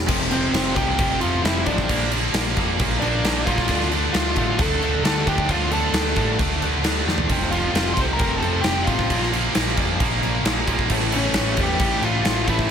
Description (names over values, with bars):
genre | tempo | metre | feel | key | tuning
quiet-loud alternative rock | 133 BPM | 4/4 | straight | D minor | A4 = 441 Hz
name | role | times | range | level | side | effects
overdriven picked electric bass | bass | 0.0-12.7 s | F1 to A2 | -26 LUFS | equal | none
high-gain distorted guitar | riff | 0.1-12.7 s | F2 to D4 | -27 LUFS | left 1 dB | distortion
thick fuzz guitar | riff | 0.1-12.7 s | F2 to E4 | -28 LUFS | left 13 dB | distortion
tight distorted guitar | riff | 0.1-12.7 s | F2 to D4 | -27 LUFS | right 12 dB | distortion
huge arena drum kit | drums | 0.1-12.7 s | crash cymbal, kick drum, snare drum, toms | -23 LUFS | equal | none
dark smooth lead guitar | melody | 0.3-12.7 s | C4 to C6 | -25 LUFS | equal | overdrive, digital delay
room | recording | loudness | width
light reverb, small room ambience | none | -18 LUFS | side -8 dB against mid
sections
0.1-12.7 A section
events
drum fill 7.1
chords
0.1 F; 1.9 Bb; 3.7 Dm; 7.3 F; 9.1 Bb; 10.9 A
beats
| 0.08 0.54 0.99 1.44 | 1.89 2.34 2.79 3.24 | 3.69 4.14 4.59 5.05 | 5.50 5.95 6.40 6.85 | 7.30 7.75 8.20 8.65 | 9.10 9.55 10.00 10.45 | 10.90 11.35 11.80 12.25 | 12.70